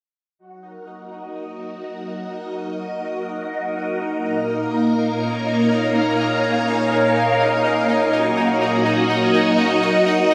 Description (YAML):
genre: ambient, sequencer-driven space music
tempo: free time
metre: none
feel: none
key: Eb minor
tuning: A4 = 440 Hz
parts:
  - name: string machine, full ensemble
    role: sustained chords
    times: 0.4-10.3 s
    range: Bb3 to Ab5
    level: -21 LUFS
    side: equal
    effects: phaser, ensemble chorus, shimmer reverb
  - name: pulsing gated texture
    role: texture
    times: 1.1-10.3 s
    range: Eb4 to Eb5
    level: -26 LUFS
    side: equal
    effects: chorus, built-in reverb, shimmer reverb
room: wet spring reverb, RT60 2.7 s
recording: none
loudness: -19 LUFS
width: mono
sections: 0.4-10.3 A section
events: fade-in on string machine 0.4-10.3; fade-in on synth texture 0.4-10.3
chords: 0.4 Ebm; 4.3 Bbm7; 8.1 Ebm